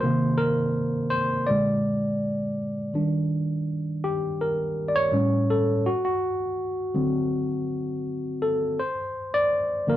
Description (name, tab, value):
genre	soul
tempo	82 BPM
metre	4/4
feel	straight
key	Eb major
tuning	A4 = 439 Hz
part	tine electric piano	solo	0.0-10.0 s	A2 to D5	-23 LUFS	equal	none
room	moderate stone room reverb, RT60 0.9 s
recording	band playing live in one room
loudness	-23 LUFS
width	side -12 dB against mid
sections	0.0-2.9 A section; 2.9-10.0 B section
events	tine electric piano solo 0.0-2.9, 2.9-10.0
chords	0.0 Cm7; 1.5 Bb7; 2.9 Ebmaj7; 5.1 A7; 5.9 D7; 8.8 D7(no3)